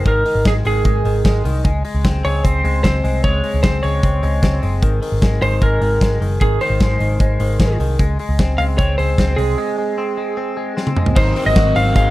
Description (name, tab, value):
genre	jangly indie pop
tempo	151 BPM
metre	4/4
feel	straight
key	Ab mixolydian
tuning	A4 = 442 Hz
part	lightly driven lead guitar	melody	0.0-12.1 s	Ab4 to F5	-20 LUFS	right 1 dB	none
part	direct-recorded clean electric guitar	arpeggios	0.0-12.1 s	Eb3 to Gb4	-24 LUFS	left 3 dB	analog chorus, slapback echo
part	vintage muted picked electric bass	bass	0.1-12.1 s	Gb1 to Db2	-18 LUFS	equal	none
part	big rock drum kit	drums	0.1-12.0 s	crash cymbal, hi-hat, kick drum, snare drum, toms	-18 LUFS	equal	none
part	overdriven electric guitar	accompaniment	11.2-12.1 s	Ab2 to C5	-22 LUFS	right 3 dB	phaser
room	little or no reverb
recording	dry, close 1970s-style studio recording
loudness	-14 LUFS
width	side -17 dB against mid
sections	0.0-11.2 A section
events	break 9.6-11.2; drum fill 10.8-11.2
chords	0.0 Ab5; 1.6 Db5; 4.8 Ab; 8.0 Db5; 11.2 Ab7